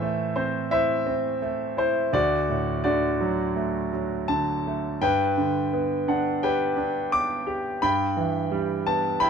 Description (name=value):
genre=classical, lyrical solo piano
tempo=85 BPM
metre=4/4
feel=rubato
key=G major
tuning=A4 = 441 Hz
part: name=clear grand piano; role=solo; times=0.0-9.3 s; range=D2 to D6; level=-22 LUFS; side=equal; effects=none
room=light reverb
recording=dark, warm production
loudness=-22 LUFS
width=side -6 dB against mid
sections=0.0-9.3 A section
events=none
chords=0.0 Am; 2.1 D; 5.0 G; 7.8 Em/G